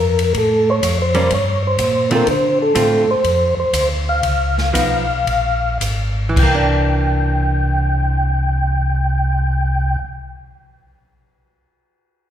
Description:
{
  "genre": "soul jazz organ trio",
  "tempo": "106-125 BPM",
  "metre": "4/4",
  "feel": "swing 67% on 8ths",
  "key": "C mixolydian",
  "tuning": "A4 = 439 Hz",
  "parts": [
    { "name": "percussive tonewheel organ", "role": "melody", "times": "0.0-10.0 s", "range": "A4 to G5", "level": "-18 LUFS", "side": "equal", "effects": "slow rotary speaker, chorus vibrato" },
    { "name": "mellow tonewheel organ", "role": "bass", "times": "0.0-10.0 s", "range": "Ab1 to D3", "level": "-19 LUFS", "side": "equal", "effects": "slow rotary speaker" },
    { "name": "swinging big-band drum kit", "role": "drums", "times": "0.2-6.5 s", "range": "crash cymbal, hi-hat, kick drum, ride cymbal, snare drum", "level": "-23 LUFS", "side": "left 1 dB", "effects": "none" },
    { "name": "archtop guitar, miked and amplified", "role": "accompaniment", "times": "1.1-10.2 s", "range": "D3 to F4", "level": "-22 LUFS", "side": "right 2 dB", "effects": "none" }
  ],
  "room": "moderate scoring stage reverb, RT60 1.8 s",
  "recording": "recorded in a church or concert hall, faint mains hum",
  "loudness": "-14 LUFS",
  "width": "side -10 dB against mid",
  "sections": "0.0-6.4 A section; 6.4-10.9 B section",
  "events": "slowing down 2.3-6.4",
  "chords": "0.3 A7b9; 2.3 Dm7; 4.2 Db9; 6.4 C9"
}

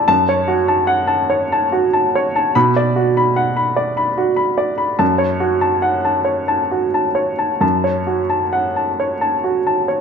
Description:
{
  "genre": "neoclassical minimalist piano",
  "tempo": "66-74 BPM",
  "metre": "3/4",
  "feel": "rubato",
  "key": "F# minor",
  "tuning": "A4 = 439 Hz",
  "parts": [
    { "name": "clear baby grand piano", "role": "solo", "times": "0.0-10.0 s", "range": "F#2 to B5", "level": "-14 LUFS", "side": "equal", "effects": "none" }
  ],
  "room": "moderate recital hall reverb, RT60 1.5 s",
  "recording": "none",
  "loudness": "-14 LUFS",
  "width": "side -6 dB against mid",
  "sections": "0.0-10.0 A section",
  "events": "none",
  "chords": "0.1 F#m; 2.5 Bm; 5.0 F#m"
}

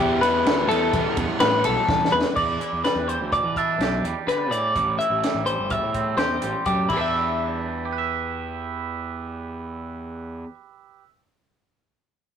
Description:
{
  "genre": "math rock and midwest emo",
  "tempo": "126 BPM",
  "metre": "5/4",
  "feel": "straight",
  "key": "E minor",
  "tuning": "A4 = 439 Hz",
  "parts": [
    { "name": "twelve-string electric guitar", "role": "arpeggios", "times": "0.0-10.5 s", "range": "E4 to E5", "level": "-22 LUFS", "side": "left 2 dB", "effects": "none" },
    { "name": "crunchy overdriven guitar", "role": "riff", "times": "0.0-2.4 s", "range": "E3 to E4", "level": "-27 LUFS", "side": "right 3 dB", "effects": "none" },
    { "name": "fuzz picked electric bass", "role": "bass", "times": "0.0-10.4 s", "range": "G1 to E3", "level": "-29 LUFS", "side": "right 1 dB", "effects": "overdrive" },
    { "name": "compact cocktail drum kit", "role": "drums", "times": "0.2-7.0 s", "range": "crash cymbal, hi-hat, kick drum, ride cymbal, snare drum", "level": "-27 LUFS", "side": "equal", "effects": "none" },
    { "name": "twangy electric guitar", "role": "accompaniment", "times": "2.4-11.1 s", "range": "E2 to E5", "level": "-30 LUFS", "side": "right 8 dB", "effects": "none" }
  ],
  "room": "moderate studio reverb, RT60 0.5 s",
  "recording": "rough rehearsal-room recording, warm saturation",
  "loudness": "-20 LUFS",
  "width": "side -8 dB against mid",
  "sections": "0.0-2.4 A section; 2.4-7.1 B section; 7.1-9.5 C section",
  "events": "drum fill 1.9-2.4",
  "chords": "0.0 Em; 2.4 Em7; 4.7 Am7; 6.9 Em7"
}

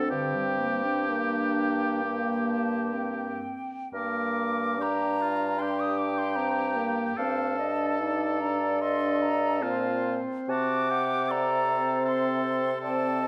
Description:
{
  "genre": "classical, slow romantic movement for wind quintet",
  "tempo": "56-80 BPM",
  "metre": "4/4",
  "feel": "rubato",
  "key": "G minor",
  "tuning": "A4 = 440 Hz",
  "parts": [
    { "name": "mellow silver concert flute", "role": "melody", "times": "0.0-13.3 s", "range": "G5 to Eb6", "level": "-35 LUFS", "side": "equal", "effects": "none" },
    { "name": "clear oboe", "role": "second line", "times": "0.0-13.3 s", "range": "F4 to Bb4", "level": "-34 LUFS", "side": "equal", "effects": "none" },
    { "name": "clear French horn", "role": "accompaniment", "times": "0.0-13.3 s", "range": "Bb3 to Eb4", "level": "-33 LUFS", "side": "equal", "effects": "none" },
    { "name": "clear clarinet", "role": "accompaniment", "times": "0.0-13.3 s", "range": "D3 to A5", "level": "-36 LUFS", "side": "equal", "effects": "none" },
    { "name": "mellow bassoon", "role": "bass", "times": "0.0-13.3 s", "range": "D2 to C3", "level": "-34 LUFS", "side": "equal", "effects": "none" }
  ],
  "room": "moderate scoring stage reverb, RT60 1.6 s",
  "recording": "none",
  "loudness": "-28 LUFS",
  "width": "mono",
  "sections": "0.0-3.9 A section; 3.9-13.3 A section",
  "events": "none",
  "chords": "0.1 Gm; 7.2 Adim/G; 10.5 D7/C"
}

